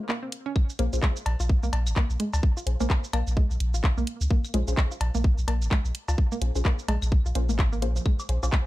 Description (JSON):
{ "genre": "minimal techno", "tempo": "128 BPM", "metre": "4/4", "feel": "swing 59% on 16ths", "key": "Bb minor", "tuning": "A4 = 443 Hz", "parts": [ { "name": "hollow square pluck", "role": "riff", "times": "0.1-8.5 s", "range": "F3 to F4", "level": "-34 LUFS", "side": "right 1 dB", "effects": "chorus, cassette tape, sidechain pumping, dub echo" }, { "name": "garage drum kit", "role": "drums", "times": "0.1-8.6 s", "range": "handclaps, hi-hat, shaker", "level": "-32 LUFS", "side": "equal", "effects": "small room ambience" }, { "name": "electronic kick drum", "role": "drums", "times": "0.6-8.6 s", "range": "none", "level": "-22 LUFS", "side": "equal", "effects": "small room ambience" }, { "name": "claves, congas, cowbell and woodblock", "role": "percussion", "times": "0.6-8.6 s", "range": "none", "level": "-35 LUFS", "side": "left 3 dB", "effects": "small room ambience, dub echo" }, { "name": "filtered dub chord stab", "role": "stabs", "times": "0.8-8.5 s", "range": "Db4 to C5", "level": "-37 LUFS", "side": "left 4 dB", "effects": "phaser, dub echo" }, { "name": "punchy sub bass", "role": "bass", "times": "0.8-8.5 s", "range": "Ab1 to Db2", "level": "-26 LUFS", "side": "equal", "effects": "sidechain pumping" } ], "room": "little or no reverb", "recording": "dark, warm production", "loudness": "-23 LUFS", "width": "side -17 dB against mid", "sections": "0.0-8.7 A section", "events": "break 0.0-0.6; filter sweep on synth stab 0.0-8.7", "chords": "0.0 Bbm7" }